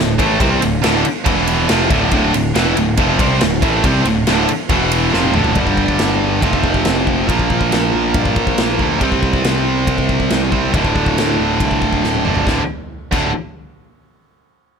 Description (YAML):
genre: heavy metal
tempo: 139 BPM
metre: 4/4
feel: straight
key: D minor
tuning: A4 = 440 Hz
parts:
  - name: scooped high-gain guitar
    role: riff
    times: 0.0-13.3 s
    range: D2 to C4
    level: -19 LUFS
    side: left 13 dB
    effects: distortion
  - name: tight distorted guitar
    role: riff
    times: 0.0-13.3 s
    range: D2 to C4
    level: -18 LUFS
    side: right 12 dB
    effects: distortion
  - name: fuzz picked electric bass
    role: bass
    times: 0.0-13.3 s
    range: D1 to G2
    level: -20 LUFS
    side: left 1 dB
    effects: overdrive
  - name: big rock drum kit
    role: drums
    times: 0.2-13.2 s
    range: crash cymbal, kick drum, ride cymbal, snare drum, toms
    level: -19 LUFS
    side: equal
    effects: none
room: small room reverb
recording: none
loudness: -13 LUFS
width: side -6 dB against mid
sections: 0.0-5.6 A section; 5.6-12.5 B section; 12.5-14.2 C section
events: drum fill 5.1-5.6, 12.0-12.5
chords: 0.0 D5; 1.3 E5; 1.7 Dm; 4.7 E5; 5.1 Dm; 5.6 G5; 6.4 F5; 7.3 Bb5; 9.0 C5; 10.7 D5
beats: | 0.41 0.84 1.27 1.70 | 2.13 2.56 2.98 3.41 | 3.84 4.27 4.70 5.13 | 5.56 5.99 6.42 6.85 | 7.29 7.72 8.15 8.58 | 9.01 9.44 9.88 10.31 | 10.74 11.18 11.61 12.04 | 12.48 12.91